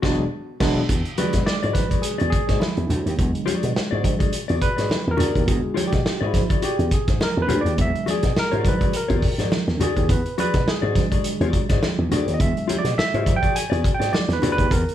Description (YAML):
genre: funk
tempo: 104 BPM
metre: 4/4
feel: swing 56% on 16ths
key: E mixolydian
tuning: A4 = 440 Hz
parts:
  - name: mellow electric guitar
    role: accompaniment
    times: 0.0-14.6 s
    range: F#4 to D5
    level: -27 LUFS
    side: left 10 dB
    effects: plate reverb
  - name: tine electric piano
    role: stabs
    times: 0.0-14.9 s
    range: D3 to G#5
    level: -25 LUFS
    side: right 2 dB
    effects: medium stereo tremolo, plate reverb
  - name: slap bass with an envelope filter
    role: bass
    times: 0.0-14.8 s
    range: E1 to B2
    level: -23 LUFS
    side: equal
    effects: none
  - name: vintage drum kit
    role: drums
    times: 0.0-14.9 s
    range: crash cymbal, hi-hat, kick drum, snare drum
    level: -23 LUFS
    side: equal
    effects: none
  - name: congas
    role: percussion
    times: 0.9-14.9 s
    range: none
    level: -30 LUFS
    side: right 4 dB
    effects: none
room: light reverb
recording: studio ambience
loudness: -19 LUFS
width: side -11 dB against mid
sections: 0.9-14.9 A section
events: band accent 0.0-0.9; tine electric piano solo 0.9-14.9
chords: 0.0 E9